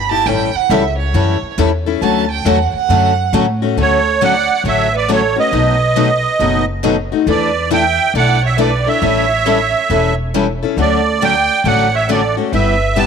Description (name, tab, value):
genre	acoustic string swing (jazz manouche)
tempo	137 BPM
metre	4/4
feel	swing 64% on 8ths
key	D major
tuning	A4 = 440 Hz
part	rich violin	second line	0.0-13.1 s	A4 to B5	-20 LUFS	right 11 dB	none
part	upright bass	bass	0.0-13.1 s	E1 to A2	-19 LUFS	equal	none
part	picked steel-string acoustic guitar	accompaniment	0.1-13.1 s	B2 to A4	-18 LUFS	left 12 dB	none
part	picked steel-string acoustic guitar	accompaniment	0.3-13.1 s	B2 to A4	-24 LUFS	right 12 dB	none
part	musette accordion	melody	3.8-13.1 s	C#5 to A5	-15 LUFS	right 4 dB	none
room	light reverb, small room ambience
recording	1960s-style stereo with parts hard left and right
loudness	-12 LUFS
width	side -6 dB against mid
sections	0.0-3.8 A section; 3.8-13.1 B section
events	violin solo 0.0-3.8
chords	0.3 A7; 2.0 Dmaj7; 5.5 B7; 7.3 E7sus4; 9.0 A7; 10.8 Dmaj7; 12.5 G6